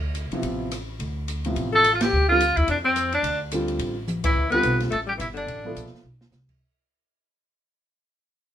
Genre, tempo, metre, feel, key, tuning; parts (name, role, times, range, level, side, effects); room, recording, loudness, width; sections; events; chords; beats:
modal jazz; 215 BPM; 4/4; swing 58% on 8ths; D dorian; A4 = 440 Hz
upright bass; bass; 0.0-6.6 s; G1 to F2; -28 LUFS; equal
open jazz drum kit; drums; 0.1-6.5 s; crash cymbal, hi-hat, kick drum, ride cymbal, rim click, snare drum, toms; -31 LUFS; equal
warm upright piano; accompaniment; 0.3-6.0 s; C3 to A4; -27 LUFS; right 1 dB
warm alto saxophone; second line; 1.7-5.9 s; D3 to A4; -29 LUFS; left 6 dB
bright tenor saxophone; melody; 1.8-5.9 s; C4 to B4; -21 LUFS; equal
light reverb; minimal, uncompressed stereo recording; -21 LUFS; side -10 dB against mid
0.0-4.4 A section; 4.4-6.6 B section
band accent 2.0, 4.2; drum fill 4.1, 6.0; fade-out 4.4-6.6
0.0 Dm9; 4.4 Dm11
0.16 0.44 0.72 | 1.00 1.28 1.56 1.84 | 2.12 2.40 2.68 2.96 | 3.24 3.52 3.80 4.08 | 4.36 4.64 4.92 5.20 | 5.48 5.76 6.04 6.32